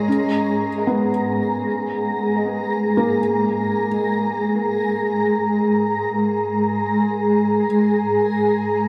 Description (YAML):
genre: ambient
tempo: free time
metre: none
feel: none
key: G# minor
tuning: A4 = 441 Hz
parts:
  - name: granular cloud pad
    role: sustained chords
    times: 0.0-8.9 s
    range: G#3 to A#5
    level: -21 LUFS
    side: equal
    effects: built-in reverb
  - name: felt-muted upright piano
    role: arpeggios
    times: 0.0-8.9 s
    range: A#3 to A#5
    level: -28 LUFS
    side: equal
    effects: tape echo
room: wet cathedral reverb, RT60 6.6 s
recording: none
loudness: -20 LUFS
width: mono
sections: 0.1-8.9 A section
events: none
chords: 0.1 G#madd9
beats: free time